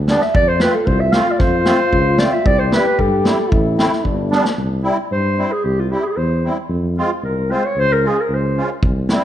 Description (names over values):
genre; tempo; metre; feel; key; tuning
klezmer; 113 BPM; 2/4; straight; C phrygian dominant from 4.6 s; A4 = 440 Hz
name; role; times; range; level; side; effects
mellow trombone; second line; 0.0-4.6 s; D4 to G4; -21 LUFS; left 3 dB; none
mellow tuba; bass; 0.0-9.1 s; G1 to G2; -20 LUFS; equal; none
mellow clarinet; melody; 0.1-8.7 s; F4 to F5; -18 LUFS; right 1 dB; none
musette accordion; accompaniment; 0.1-9.2 s; G3 to F4; -22 LUFS; right 1 dB; none
vintage drum kit; drums; 0.1-4.6, 8.8-9.2 s; kick drum, snare drum; -19 LUFS; equal; none
room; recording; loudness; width
moderate recital hall reverb, RT60 1.5 s; dark, warm production; -14 LUFS; side -11 dB against mid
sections
0.0-4.6 A section; 4.6-9.2 B section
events
drum fill 4.3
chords
0.4 F; 2.5 C; 3.5 Am; 4.0 G; 4.6 C; 6.7 Fm; 7.8 Db